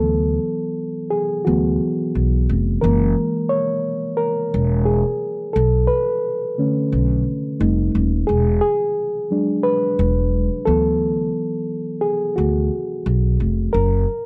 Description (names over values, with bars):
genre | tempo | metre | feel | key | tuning
hip hop | 88 BPM | 4/4 | swing 59% on 16ths | unclear | A4 = 440 Hz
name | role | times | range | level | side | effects
reed electric piano | accompaniment | 0.0-14.3 s | D3 to C#5 | -22 LUFS | equal | cassette tape
upright bass | bass | 0.0-14.0 s | Eb1 to D2 | -21 LUFS | equal | none
room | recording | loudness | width
light reverb | cassette tape | -20 LUFS | mono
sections
0.0-14.3 A section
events
reed electric piano solo 0.0-14.3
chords
0.0 D6; 2.8 F#7 (rootless); 5.6 Bm7; 7.6 F9; 8.3 E7; 10.7 D6; 13.7 F#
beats
| 0.10 0.78 1.46 2.15 | 2.83 3.51 4.19 4.87 | 5.55 6.24 6.92 7.60 | 8.28 8.96 9.64 10.33 | 11.01 11.69 12.37 13.05 | 13.74